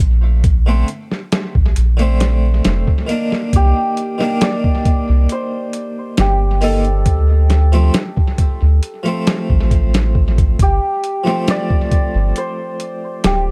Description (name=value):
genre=trip hop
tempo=68 BPM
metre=4/4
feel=straight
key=C dorian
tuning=A4 = 440 Hz
part: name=soft dub sub bass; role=bass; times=0.0-13.5 s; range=D1 to D2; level=-16 LUFS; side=equal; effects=none
part: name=boom bap sampler-style drum kit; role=drums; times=0.0-13.5 s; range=hi-hat, kick drum, snare drum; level=-19 LUFS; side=equal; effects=tape echo
part: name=harpsichord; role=accompaniment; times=0.7-13.5 s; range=D3 to Eb4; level=-24 LUFS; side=equal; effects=tremolo, tape echo
part: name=santur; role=melody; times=3.6-13.5 s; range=G4 to D5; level=-24 LUFS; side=equal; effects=tape echo
room=small room ambience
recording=echo-heavy mix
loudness=-16 LUFS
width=mono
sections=0.0-13.5 A section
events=none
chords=0.0 Bbmaj9; 3.5 Cm9; 7.1 Dm7; 10.6 G9sus4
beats=| 0.00 0.89 1.77 2.65 | 3.53 4.42 5.30 6.18 | 7.06 7.94 8.83 9.71 | 10.59 11.47 12.36 13.24